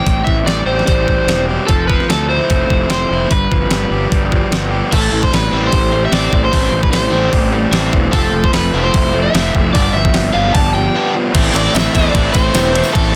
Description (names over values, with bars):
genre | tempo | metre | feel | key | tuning
indie rock | 149 BPM | 4/4 | straight | A minor | A4 = 437 Hz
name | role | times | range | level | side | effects
overdriven semi-hollow guitar | melody | 0.0-13.2 s | A4 to A5 | -20 LUFS | equal | slapback echo
overdriven semi-hollow guitar | riff | 0.0-13.2 s | G2 to G4 | -21 LUFS | equal | none
fuzz fingered electric bass | bass | 0.1-13.2 s | E1 to E2 | -21 LUFS | equal | overdrive
detuned 8-bit digital drum machine | drums | 0.1-13.0 s | crash cymbal, hi-hat, kick drum, ride cymbal, snare drum | -19 LUFS | equal | none
overdriven electric guitar | riff | 4.9-13.1 s | E3 to D4 | -23 LUFS | equal | subtle chorus, slapback echo
tambourine | percussion | 11.4-13.1 s | none | -33 LUFS | equal | none
room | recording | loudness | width
light reverb | dense, heavily limited modern master | -14 LUFS | mono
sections
0.0-4.9 A section; 4.9-11.3 B section; 11.3-13.2 C section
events
none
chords
0.0 Am7; 1.7 Fmaj7; 3.3 G7; 4.9 Am7; 8.1 Fmaj7; 9.7 G7; 11.3 Am